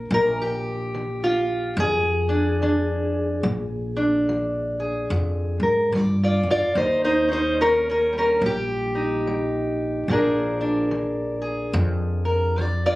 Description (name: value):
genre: acoustic country blues, solo or duo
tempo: 72 BPM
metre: 4/4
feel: swing 61% on 8ths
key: Bb mixolydian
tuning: A4 = 440 Hz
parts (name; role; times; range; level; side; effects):
- fingerpicked steel-string acoustic guitar; melody; 0.0-13.0 s; Bb2 to D5; -21 LUFS; equal; none
- upright bass; bass; 0.0-13.0 s; Bb1 to Ab2; -26 LUFS; equal; none
room: light reverb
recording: recorded on a phone in the room, club reverb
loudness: -20 LUFS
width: side -18 dB against mid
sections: 0.0-13.0 A section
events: none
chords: 0.1 Bb7; 6.8 Eb7; 10.1 Bb7